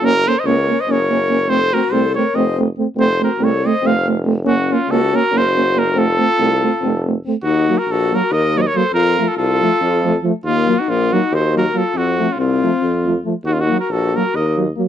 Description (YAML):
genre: balkan folk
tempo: 281 BPM (eighths)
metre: 7/8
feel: straight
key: F phrygian dominant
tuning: A4 = 440 Hz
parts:
  - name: warm trumpet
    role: melody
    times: 0.0-14.6 s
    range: F4 to F5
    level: -18 LUFS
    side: right 3 dB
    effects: slapback echo
  - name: warm alto saxophone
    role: second line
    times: 0.0-14.6 s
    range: Bb3 to C5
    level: -21 LUFS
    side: left 10 dB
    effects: none
  - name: dark euphonium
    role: accompaniment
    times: 0.0-14.9 s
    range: F3 to Bb3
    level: -20 LUFS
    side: right 7 dB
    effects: none
  - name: warm French horn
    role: accompaniment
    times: 0.0-14.8 s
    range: A3 to Db4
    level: -22 LUFS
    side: left 6 dB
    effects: none
  - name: clear tuba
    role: bass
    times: 0.0-14.7 s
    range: F1 to F2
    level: -20 LUFS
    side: equal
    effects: none
room: little or no reverb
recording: dry, close 1970s-style studio recording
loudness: -14 LUFS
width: side -10 dB against mid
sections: 0.0-7.4 A section; 7.4-14.9 B section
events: none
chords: 0.0 Gb; 1.5 F; 4.5 Gb; 5.9 F; 7.4 Ebm; 8.9 F; 10.4 Ebm; 11.9 F; 13.5 Ebm